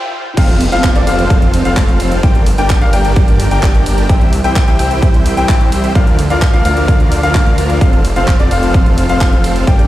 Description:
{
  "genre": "EDM, festival progressive house",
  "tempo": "129 BPM",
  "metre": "4/4",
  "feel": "straight",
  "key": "F major",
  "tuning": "A4 = 440 Hz",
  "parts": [
    { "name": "swell and downlifter", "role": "sound effects", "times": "0.0-4.1 s", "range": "none", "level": "-23 LUFS", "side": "right 1 dB", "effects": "none" },
    { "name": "bright baby grand piano", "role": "arpeggios", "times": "0.4-9.9 s", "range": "D5 to G5", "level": "-20 LUFS", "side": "left 3 dB", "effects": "sidechain pumping, dub echo" },
    { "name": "dense compressed supersaw", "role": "riff", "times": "0.4-9.9 s", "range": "C4 to G5", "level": "-18 LUFS", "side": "equal", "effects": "sidechain pumping, dub echo" },
    { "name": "wide detuned saw bass", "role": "bass", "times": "0.4-9.9 s", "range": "F1 to D2", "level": "-16 LUFS", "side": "equal", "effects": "chorus, sidechain pumping" },
    { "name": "electronic kick drum", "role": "drums", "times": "0.4-9.8 s", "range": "none", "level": "-11 LUFS", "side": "equal", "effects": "overdrive" },
    { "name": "house drum kit", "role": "drums", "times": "0.4-9.9 s", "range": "crash cymbal, handclaps, hi-hat, ride cymbal, rim click", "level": "-24 LUFS", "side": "right 1 dB", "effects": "none" }
  ],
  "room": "little or no reverb",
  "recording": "played on a big sound system in a bare room, stone room reverb, high-pass filter",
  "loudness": "-9 LUFS",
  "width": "side -15 dB against mid",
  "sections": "0.4-9.9 A section",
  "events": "swell 0.0-0.4; stop 0.0-0.4; drop 0.4-9.9",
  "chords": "0.4 F; 2.2 Gm; 4.1 C; 6.0 Bb/D; 7.8 F"
}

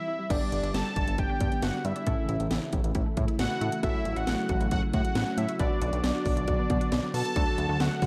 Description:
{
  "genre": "synth-pop",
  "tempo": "136 BPM",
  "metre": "4/4",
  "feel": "straight",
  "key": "unclear",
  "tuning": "A4 = 440 Hz",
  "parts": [
    { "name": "fat analog lead", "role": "melody", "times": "0.0-8.1 s", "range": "D5 to A5", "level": "-35 LUFS", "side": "equal", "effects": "diffuse ambient delay" },
    { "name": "funky polysynth comp", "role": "accompaniment", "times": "0.0-8.1 s", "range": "B3 to B4", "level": "-41 LUFS", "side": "equal", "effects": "none" },
    { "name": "resonant blip pluck", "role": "arpeggios", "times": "0.0-8.1 s", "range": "D3 to F#4", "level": "-39 LUFS", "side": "equal", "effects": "chorus, diffuse ambient delay" },
    { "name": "brassy analog pad", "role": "sustained chords", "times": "0.3-8.1 s", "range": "C#3 to G4", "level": "-37 LUFS", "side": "equal", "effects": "chorus, tremolo" },
    { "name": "fat analog bass", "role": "bass", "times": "0.3-8.1 s", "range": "G1 to B2", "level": "-33 LUFS", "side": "equal", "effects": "none" },
    { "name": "house drum kit", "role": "drums", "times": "0.3-8.1 s", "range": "crash cymbal, hi-hat, kick drum, snare drum", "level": "-32 LUFS", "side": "equal", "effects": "overdrive" }
  ],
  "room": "moderate plate reverb, RT60 1.1 s",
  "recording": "dreamy mix soaked in reverb",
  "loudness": "-28 LUFS",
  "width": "mono",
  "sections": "0.3-7.4 A section",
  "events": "break 0.0-0.3",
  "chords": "0.3 G; 2.1 A; 3.8 F#m7/A; 5.6 Bm; 7.4 D"
}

